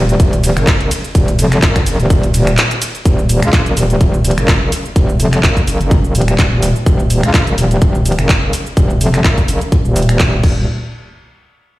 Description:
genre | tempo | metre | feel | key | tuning
bass house | 126 BPM | 4/4 | swing 55% on 16ths | Eb minor | A4 = 440 Hz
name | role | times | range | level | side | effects
metallic wobble bass | bass | 0.0-10.7 s | Eb1 to Db2 | -13 LUFS | equal | chorus, sidechain pumping
garage drum kit | drums | 0.1-10.5 s | crash cymbal, finger snaps, handclaps, hi-hat, ride cymbal, shaker | -18 LUFS | equal | none
electronic kick drum | drums | 0.2-10.5 s | none | -11 LUFS | equal | none
room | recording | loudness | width
little or no reverb | played on a big sound system in a bare room, stone room reverb | -10 LUFS | side -17 dB against mid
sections
0.0-3.1 A section; 3.1-10.7 B section; 10.7-11.8 C section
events
drop 0.0-3.1; break 2.6-3.1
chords
none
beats
0.20 0.67 | 1.15 1.63 2.10 2.58 | 3.06 3.53 4.01 4.48 | 4.96 5.44 5.91 6.39 | 6.86 7.34 7.82 8.29 | 8.77 9.24 9.72 10.20

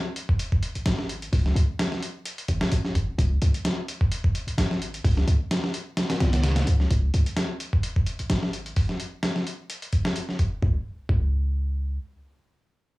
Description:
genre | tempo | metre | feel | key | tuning
breakbeat, breaks | 129 BPM | 4/4 | swing 55% on 16ths | unclear | A4 = 439 Hz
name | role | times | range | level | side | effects
dusty soul sampler-style drum kit | drums | 0.2-11.2 s | hi-hat, kick drum, snare drum | -25 LUFS | equal | overdrive
warm 808-style bass | bass | 0.8-12.0 s | G#1 to C#2 | -23 LUFS | equal | tube saturation
room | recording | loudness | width
light reverb | dry, gritty hardware recording, small room ambience | -23 LUFS | side -20 dB against mid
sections
0.0-6.9 A section; 6.9-10.6 B section; 10.6-13.0 C section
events
none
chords
none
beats
0.40 0.86 | 1.33 1.79 2.26 2.72 | 3.19 3.65 4.12 4.58 | 5.05 5.51 5.98 6.45 | 6.91 7.38 7.84 8.30 | 8.77 9.23 9.70 10.17 | 10.63 11.10 11.56

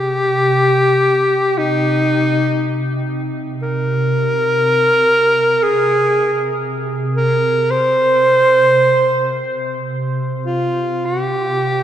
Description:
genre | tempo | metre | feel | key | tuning
caucasian folk, Caucasian lament | free time | none | none | C minor | A4 = 440 Hz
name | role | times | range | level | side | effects
clear alto saxophone | melody | 0.0-11.8 s | Eb4 to C5 | -14 LUFS | equal | none
soft additive organ-like pad | drone | 0.0-11.8 s | C3 | -22 LUFS | right 1 dB | ensemble chorus, built-in reverb
room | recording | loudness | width
wet cathedral reverb, RT60 5.8 s | in a vast, echoing space | -13 LUFS | side -10 dB against mid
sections
0.0-11.8 A section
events
none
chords
none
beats
free time

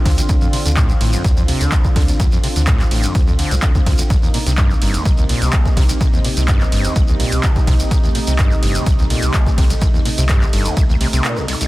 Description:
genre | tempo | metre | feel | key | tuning
acid house | 126 BPM | 4/4 | straight | unclear | A4 = 441 Hz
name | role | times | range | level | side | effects
warm analog pad | sustained chords | 0.0-11.7 s | C3 to F4 | -27 LUFS | equal | chorus, sidechain pumping
deep dark ambient pad | texture | 0.0-11.7 s | C4 to F5 | -28 LUFS | right 1 dB | chorus, built-in reverb, sidechain pumping
overdriven acid bass | riff | 0.1-11.7 s | Bb1 to D3 | -22 LUFS | equal | distortion, wide subtle chorus
round analog bass | bass | 0.1-11.2 s | G1 to D2 | -19 LUFS | equal | sidechain pumping
electronic kick drum | drums | 0.1-10.9 s | none | -16 LUFS | equal | none
punchy analog drum machine | drums | 0.1-11.7 s | handclaps, hi-hat, ride cymbal | -25 LUFS | right 1 dB | none
shekere | percussion | 0.2-11.7 s | none | -28 LUFS | right 1 dB | none
room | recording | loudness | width
digital ambience | dense, heavily limited modern master | -13 LUFS | side -18 dB against mid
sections
0.0-11.7 A section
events
break 11.2-11.7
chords
0.0 Dm7; 4.1 Cm7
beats
| 0.29 0.77 1.25 1.72 | 2.20 2.67 3.15 3.63 | 4.10 4.58 5.05 5.53 | 6.01 6.48 6.96 7.44 | 7.91 8.39 8.86 9.34 | 9.82 10.29 10.77 11.24

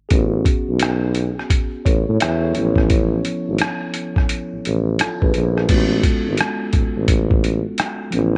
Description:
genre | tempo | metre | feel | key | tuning
R&B, neo-soul | 86 BPM | 4/4 | swing 61% on 16ths | A major | A4 = 441 Hz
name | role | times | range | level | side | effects
mellow tine electric piano | accompaniment | 0.1-8.4 s | E#3 to E5 | -26 LUFS | equal | none
mellow tuba | bass | 0.1-8.4 s | G#1 to A2 | -22 LUFS | equal | none
boom bap sampler-style drum kit | drums | 0.1-8.3 s | crash cymbal, hi-hat, kick drum, rim click | -21 LUFS | equal | none
room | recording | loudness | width
light reverb | faint mains hum | -19 LUFS | mono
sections
0.1-5.7 A section; 5.7-8.4 B section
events
none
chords
0.1 A6; 2.6 C#7alt; 5.7 A6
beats
| 0.11 0.81 1.50 2.20 | 2.90 3.60 4.29 4.99 | 5.69 6.39 7.09 7.78

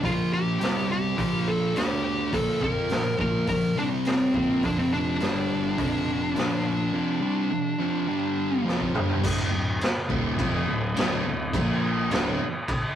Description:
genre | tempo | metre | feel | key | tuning
stoner and doom metal | 104 BPM | 4/4 | straight | D minor | A4 = 436 Hz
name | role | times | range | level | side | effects
fuzz lead guitar | melody | 0.0-8.6 s | C4 to Bb4 | -27 LUFS | left 1 dB | distortion
sludgy distorted guitar | riff | 0.0-9.2 s | F2 to F4 | -30 LUFS | equal | overdrive
thick fuzz guitar | riff | 0.0-12.4 s | D2 to F4 | -32 LUFS | left 6 dB | distortion
thick fuzz guitar | riff | 0.0-12.4 s | D2 to F4 | -33 LUFS | right 7 dB | distortion
fuzz picked electric bass | bass | 0.0-12.4 s | D1 to F2 | -32 LUFS | equal | overdrive
raw garage drum kit | drums | 0.0-12.8 s | crash cymbal, hi-hat, kick drum, snare drum, toms | -28 LUFS | equal | none
room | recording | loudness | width
moderate studio reverb, RT60 0.5 s | rough rehearsal-room recording, warm saturation | -23 LUFS | side -10 dB against mid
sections
0.0-9.2 A section; 9.2-13.0 B section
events
drum fill 8.7-9.2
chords
0.0 Bb5; 0.6 C5; 1.2 Bb5; 1.8 D5; 2.3 Bb5; 3.8 C5; 4.3 Bb5; 4.6 F5; 5.2 G5; 5.8 F5; 6.4 Bb5; 6.9 F5; 8.1 G5; 8.7 F5; 9.2 Dm; 11.5 Bb5; 12.1 D5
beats
| 0.03 0.60 1.18 1.75 | 2.33 2.90 3.48 4.06 | 4.63 5.21 5.78 6.36 | 6.94 7.51 8.09 8.66 | 9.24 9.81 10.39 10.96 | 11.54 12.11 12.69

